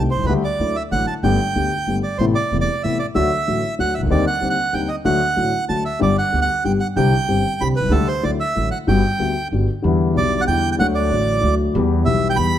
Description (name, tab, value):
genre	tango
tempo	188 BPM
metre	3/4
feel	rubato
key	G major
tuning	A4 = 440 Hz
part	bandoneon	melody	0.0-12.6 s	A4 to B5	-21 LUFS	right 4 dB	none
part	dark concert grand piano	accompaniment	0.0-12.6 s	E1 to G4	-19 LUFS	left 3 dB	none
part	upright bass	bass	0.0-12.6 s	E1 to E2	-24 LUFS	right 2 dB	none
room	moderate recital hall reverb, RT60 1.6 s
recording	none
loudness	-16 LUFS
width	side -10 dB against mid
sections	0.0-9.8 A section; 9.8-12.6 B section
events	none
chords	0.3 Dsus4; 0.6 Dadd9; 1.2 Gadd9; 2.2 Amadd9; 3.2 D; 4.1 Cmadd9/Eb; 5.0 D; 6.0 G; 7.0 Csus2; 7.9 Dsus4; 8.2 Dadd9; 8.9 Gmaj7; 9.8 Em7; 10.8 D; 11.7 Em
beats	| 0.27 0.59 0.91 | 1.23 1.54 1.86 | 2.19 2.51 2.83 | 3.15 3.47 3.79 | 4.10 4.42 4.73 | 5.05 5.37 5.69 | 6.01 6.33 6.65 | 6.97 7.29 7.61 | 7.92 8.24 8.56 | 8.87 9.19 9.51 | 9.84 10.16 10.48 | 10.80 11.11 11.43 | 11.75 12.06 12.38